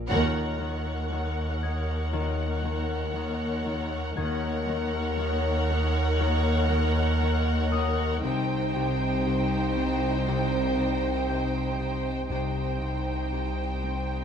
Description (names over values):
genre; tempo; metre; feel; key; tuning
cinematic, suspense film score; 59 BPM; 4/4; straight; Eb dorian; A4 = 441 Hz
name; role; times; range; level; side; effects
Celtic harp; riff; 0.0-14.2 s; Bb2 to Eb4; -34 LUFS; left 6 dB; none
punchy sub bass; drone; 0.0-14.2 s; Bb1 to Eb2; -32 LUFS; equal; none
concert harp; texture; 0.0-14.2 s; Gb5 to Bb6; -38 LUFS; left 12 dB; none
rich studio violin section; melody; 0.1-14.2 s; Gb5 to G5; -34 LUFS; right 1 dB; none
rich studio violin section; second line; 0.1-14.2 s; C5 to Db5; -34 LUFS; left 1 dB; none
warm studio viola section; accompaniment; 0.1-14.2 s; Eb4 to Bb4; -34 LUFS; left 1 dB; none
clear studio double bass section; bass; 0.1-14.2 s; C2 to Eb2; -31 LUFS; right 3 dB; none
rich studio cello section; bass; 0.1-14.2 s; C2 to Eb2; -33 LUFS; left 1 dB; none
room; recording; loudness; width
moderate stone room reverb, RT60 1.1 s; dark, warm production; -25 LUFS; side -7 dB against mid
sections
0.1-14.2 A section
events
band accent 0.1-1.1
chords
0.1 Ebm7; 8.2 Cm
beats
| 0.10 1.12 2.13 3.15 | 4.17 5.19 6.20 7.22 | 8.24 9.25 10.27 11.29 | 12.30 13.32